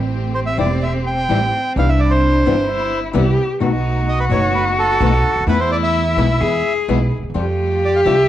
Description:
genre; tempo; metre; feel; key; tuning
tango; 129 BPM; 4/4; rubato; A minor; A4 = 440 Hz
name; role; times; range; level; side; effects
warm cello; second line; 0.0-8.3 s; C4 to G#4; -20 LUFS; left 2 dB; none
clear symphonic string section; stabs; 0.0-8.3 s; G3 to G4; -28 LUFS; right 3 dB; none
upright bass; bass; 0.0-8.3 s; E1 to F2; -19 LUFS; right 1 dB; none
bandoneon; melody; 0.3-8.3 s; A4 to G5; -20 LUFS; right 2 dB; none
nylon-string guitar; accompaniment; 0.6-8.1 s; B2 to F#4; -22 LUFS; left 6 dB; none
room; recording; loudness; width
moderate large studio reverb, RT60 1.2 s; worn, warbling old tape, cassette tape, warbly pitch drift, nothing above 10.6 kHz; -14 LUFS; side -12 dB against mid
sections
0.0-8.3 A section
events
none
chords
0.0 Am7; 1.8 Cmaj7; 3.6 B7; 5.5 Esus4; 6.4 E; 7.4 Fadd9

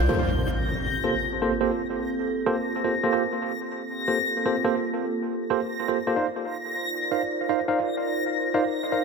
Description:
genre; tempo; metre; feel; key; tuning
drum and bass; 158 BPM; 4/4; straight; G minor; A4 = 441 Hz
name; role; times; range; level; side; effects
warbly tape-like pad; sustained chords; 0.0-9.0 s; Bb3 to D5; -30 LUFS; right 2 dB; chorus, built-in reverb, vintage 12-bit sampler grit
backwards swelling texture; texture; 0.0-9.0 s; Bb6; -30 LUFS; left 4 dB; built-in reverb
mellow tine electric piano; stabs; 0.1-9.0 s; Bb3 to F5; -26 LUFS; right 2 dB; slow stereo tremolo, low-pass filter, dub echo
impact; sound effects; 0.1-1.6 s; none; -29 LUFS; equal; none
room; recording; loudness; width
moderate plate reverb, RT60 1.6 s, digital ambience; echo-heavy mix; -23 LUFS; side -4 dB against mid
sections
0.1-9.0 A section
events
impact 0.1-1.6; filter sweep on ambient pad 0.1-9.0; filter sweep on tine electric piano 0.1-9.0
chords
0.1 Gm11; 6.2 Cm11

